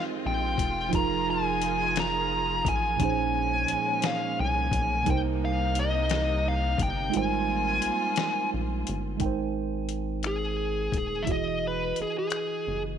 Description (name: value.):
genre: slow six-eight R&B.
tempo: 58 BPM (dotted quarters).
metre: 6/8.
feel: straight.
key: Ab major.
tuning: A4 = 441 Hz.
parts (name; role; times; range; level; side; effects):
mellow tine electric piano; accompaniment; 0.0-13.0 s; Bb2 to G5; -31 LUFS; right 11 dB; auto-pan.
clear studio string section; sustained chords; 0.0-9.2 s; C3 to Bb4; -36 LUFS; left 2 dB; none.
bluesy overdriven lead guitar; melody; 0.3-12.8 s; Ab4 to Bb5; -28 LUFS; left 1 dB; distortion, tape echo.
rubbery square bass; bass; 0.3-13.0 s; Eb1 to C2; -32 LUFS; left 1 dB; none.
dusty soul sampler-style drum kit; drums; 0.6-12.5 s; finger snaps, hi-hat, kick drum, snare drum; -32 LUFS; left 5 dB; none.
room: light reverb, digital ambience.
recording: 1960s-style stereo.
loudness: -25 LUFS.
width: side -8 dB against mid.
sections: 0.0-9.2 A section; 9.2-13.0 B section.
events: kick muted 7.1-9.2; lead electric guitar solo 9.2-13.0.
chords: 0.0 Abmaj13; 0.9 Fm7; 3.0 Bbm11; 5.1 Cm7; 7.1 Abmaj13; 9.2 Abmaj7; 11.3 Emaj9.